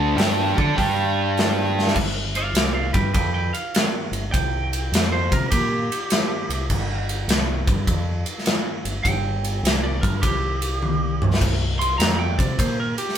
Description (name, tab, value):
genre	blues rock power trio and southern rock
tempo	102 BPM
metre	4/4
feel	swing 66% on 8ths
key	unclear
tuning	A4 = 440 Hz
part	cranked stack guitar	riff	0.0-2.0 s	D3 to D5	-20 LUFS	right 2 dB	overdrive
part	growling fingered electric bass	bass	0.0-12.9 s	G1 to D3	-25 LUFS	equal	overdrive
part	big rock drum kit	drums	0.2-13.2 s	crash cymbal, hi-hat, kick drum, ride cymbal, snare drum, toms	-22 LUFS	equal	none
part	lightly driven lead guitar	melody	2.4-13.2 s	G4 to C6	-26 LUFS	right 2 dB	none
room	moderate studio reverb, RT60 0.5 s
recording	band playing live in one room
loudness	-19 LUFS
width	side -9 dB against mid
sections	0.0-2.0 A section; 2.0-13.2 B section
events	drum fill 1.7, 10.8-11.4; lead electric guitar solo 2.0-13.2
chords	0.0 D5; 0.8 G5; 2.0 G7; 4.3 C5; 6.7 Gsus4; 10.2 C5; 11.4 C7(no3)